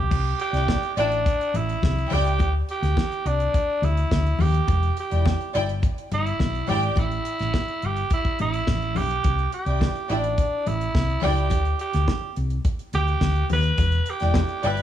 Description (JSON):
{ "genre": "disco", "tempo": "105 BPM", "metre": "4/4", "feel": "straight", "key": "unclear", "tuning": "A4 = 440 Hz", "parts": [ { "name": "raspy tenor saxophone", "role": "melody", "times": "0.0-14.8 s", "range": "D4 to B4", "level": "-26 LUFS", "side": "right 2 dB", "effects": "none" }, { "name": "hollow-body short-scale fingered electric bass", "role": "bass", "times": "0.0-14.8 s", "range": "E1 to Eb2", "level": "-23 LUFS", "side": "equal", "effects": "none" }, { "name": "damped 70s drum kit", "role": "drums", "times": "0.1-14.8 s", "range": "crash cymbal, hi-hat, kick drum, snare drum", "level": "-25 LUFS", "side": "equal", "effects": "none" }, { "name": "congas", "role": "percussion", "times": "0.1-14.5 s", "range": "none", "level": "-32 LUFS", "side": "left 12 dB", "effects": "none" }, { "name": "dark studio string section", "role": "second line", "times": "0.5-14.8 s", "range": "E4 to G5", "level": "-28 LUFS", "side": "left 1 dB", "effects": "none" } ], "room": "studio reverb", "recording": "small room ambience", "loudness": "-21 LUFS", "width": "side -11 dB against mid", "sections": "0.1-14.8 A section", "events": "none", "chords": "0.1 C69; 2.4 Dsus4; 4.7 Em7; 7.0 A5; 9.2 C69; 11.5 Dsus4; 13.8 Em7", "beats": "| 0.11 0.68 1.26 1.83 | 2.40 2.97 3.54 4.12 | 4.69 5.26 5.83 6.40 | 6.97 7.54 8.11 8.68 | 9.25 9.81 10.38 10.95 | 11.52 12.09 12.65 13.22 | 13.79 14.35" }